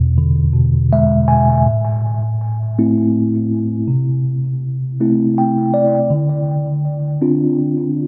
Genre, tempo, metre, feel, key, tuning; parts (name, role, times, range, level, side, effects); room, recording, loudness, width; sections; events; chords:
folk; 54 BPM (dotted quarters); 6/8; straight; A minor; A4 = 440 Hz
mellow tine electric piano; solo; 0.0-8.1 s; E2 to G#5; -16 LUFS; equal; tape echo
light reverb, digital ambience; dry, close 1970s-style studio recording; -16 LUFS; mono
0.0-1.6 A section; 1.6-8.1 B section
0.0 E7; 1.6 Am; 3.9 C6; 6.1 Dm7